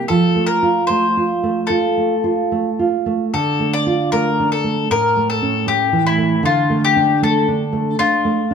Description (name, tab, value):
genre	romantic duo for mandolin and classical guitar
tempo	77 BPM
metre	4/4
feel	rubato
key	F major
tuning	A4 = 440 Hz
part	mandolin	melody	0.0-8.5 s	E4 to D5	-18 LUFS	left 5 dB	none
part	nylon-string guitar	accompaniment	0.0-8.5 s	A2 to F4	-17 LUFS	right 4 dB	none
room	moderate recital hall reverb, RT60 1.4 s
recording	none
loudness	-15 LUFS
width	side -7 dB against mid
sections	0.0-8.5 A section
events	none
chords	0.1 F; 3.3 Dm; 4.9 A; 6.5 Dm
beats	| 0.08 0.88 1.68 2.52 | 3.33 4.13 4.90 5.67 | 6.45 7.23 7.99